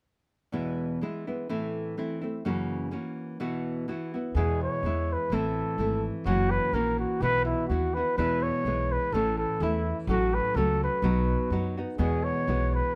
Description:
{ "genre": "mexican folk, mariachi", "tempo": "126 BPM", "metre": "2/4", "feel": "swing 53% on 8ths", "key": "E major", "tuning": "A4 = 440 Hz", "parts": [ { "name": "nylon-string guitar", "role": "accompaniment", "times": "0.5-13.0 s", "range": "E2 to F#4", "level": "-32 LUFS", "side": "equal", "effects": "none" }, { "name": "upright bass", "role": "bass", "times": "4.3-12.8 s", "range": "F#1 to F#2", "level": "-32 LUFS", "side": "equal", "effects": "none" }, { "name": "dark trumpet", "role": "melody", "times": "4.4-13.0 s", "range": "E4 to C#5", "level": "-31 LUFS", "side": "equal", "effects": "plate reverb" } ], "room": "moderate small room reverb, RT60 0.5 s", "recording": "none", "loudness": "-28 LUFS", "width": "mono", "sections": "0.5-4.4 A section; 4.4-13.0 B section", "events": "none", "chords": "0.5 E; 1.5 Am; 2.4 F#7; 3.4 Bsus4; 4.4 E; 5.3 Am; 6.3 F#7; 7.2 Bsus4; 8.2 E; 9.1 A; 10.1 F#m/A; 11.0 B; 12.0 Eadd9" }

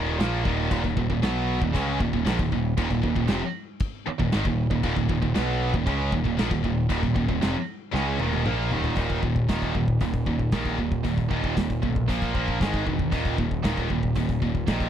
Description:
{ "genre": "heavy metal", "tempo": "116 BPM", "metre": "4/4", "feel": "straight", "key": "Eb minor", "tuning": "A4 = 440 Hz", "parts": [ { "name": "heavy high-gain guitar", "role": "riff", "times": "0.0-14.9 s", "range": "Eb2 to Db4", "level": "-27 LUFS", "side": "right 9 dB", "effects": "distortion" }, { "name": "scooped high-gain guitar", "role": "riff", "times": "0.0-14.9 s", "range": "Eb2 to Db4", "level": "-29 LUFS", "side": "left 10 dB", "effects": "distortion" }, { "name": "growling picked electric bass", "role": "bass", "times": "0.0-14.9 s", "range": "Eb1 to Db2", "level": "-28 LUFS", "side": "left 1 dB", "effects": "overdrive" }, { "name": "big rock drum kit", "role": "drums", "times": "0.2-14.9 s", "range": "crash cymbal, hi-hat, kick drum, snare drum, toms", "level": "-29 LUFS", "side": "left 1 dB", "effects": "none" } ], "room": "little or no reverb", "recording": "dry, close 1970s-style studio recording", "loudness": "-22 LUFS", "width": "side -9 dB against mid", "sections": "0.0-9.0 A section; 9.0-14.9 B section", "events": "drum fill 7.9-9.0", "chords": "0.0 Ebm; 9.0 Eb5; 12.1 Bb5; 12.6 Ab5; 13.1 Eb5" }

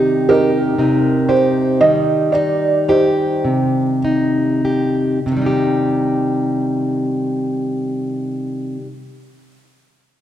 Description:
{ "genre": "acoustic folk-pop ballad", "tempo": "47-62 BPM", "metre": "4/4", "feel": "straight", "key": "C minor", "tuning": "A4 = 440 Hz", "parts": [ { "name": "felt-muted upright piano", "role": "melody", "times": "0.0-5.2 s", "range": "Eb4 to Eb5", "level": "-16 LUFS", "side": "right 2 dB", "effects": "none" }, { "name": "fingerpicked plugged-in steel-string acoustic guitar", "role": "accompaniment", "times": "0.0-9.0 s", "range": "C3 to G4", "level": "-16 LUFS", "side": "left 1 dB", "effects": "none" } ], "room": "moderate scoring stage reverb, RT60 1.6 s", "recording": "dark, warm production", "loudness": "-14 LUFS", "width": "side -11 dB against mid", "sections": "0.0-5.3 A section; 5.3-10.2 B section", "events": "slowing down 0.0-5.3", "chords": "0.0 Cm" }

